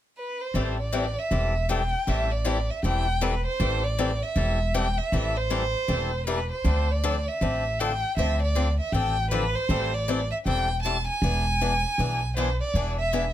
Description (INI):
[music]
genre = acoustic string swing (jazz manouche)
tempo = 158 BPM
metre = 4/4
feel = swing 64% on 8ths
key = A minor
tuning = A4 = 437 Hz
[part]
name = warm violin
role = melody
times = 0.2-13.3 s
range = B4 to A5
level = -28 LUFS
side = right 1 dB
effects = none
[part]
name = picked swing-style acoustic guitar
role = accompaniment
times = 0.5-13.2 s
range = D3 to A4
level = -30 LUFS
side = left 5 dB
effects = none
[part]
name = upright bass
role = bass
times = 0.5-13.3 s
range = E1 to D2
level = -26 LUFS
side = equal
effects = none
[sound]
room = light reverb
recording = none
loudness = -23 LUFS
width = side -12 dB against mid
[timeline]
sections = 0.5-13.3 A section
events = none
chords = 0.0 N.C.; 0.5 Am7; 6.6 Dm9; 9.7 Am7; 11.2 E7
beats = 0.16 | 0.54 0.93 1.31 1.69 | 2.07 2.45 2.84 3.22 | 3.60 3.98 4.36 4.74 | 5.12 5.50 5.89 6.27 | 6.65 7.03 7.41 7.79 | 8.17 8.55 8.93 9.31 | 9.70 10.08 10.46 10.84 | 11.22 11.60 11.98 12.36 | 12.74 13.12